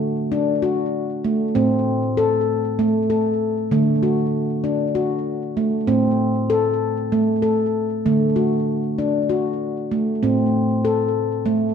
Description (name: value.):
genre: world meditative, meditative tuned percussion.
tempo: 194 BPM (eighths).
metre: 7/8.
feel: straight.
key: A dorian.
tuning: A4 = 439 Hz.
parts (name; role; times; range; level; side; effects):
handpan; solo; 0.0-11.7 s; A2 to A4; -18 LUFS; equal; ping-pong delay.
room: wet recital hall reverb, RT60 1.4 s, studio ambience.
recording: dark, warm production.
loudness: -18 LUFS.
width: side -7 dB against mid.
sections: 0.0-11.7 A section.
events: none.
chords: 0.0 D; 1.6 Am; 3.7 D; 5.9 Am; 8.1 D; 10.2 Am.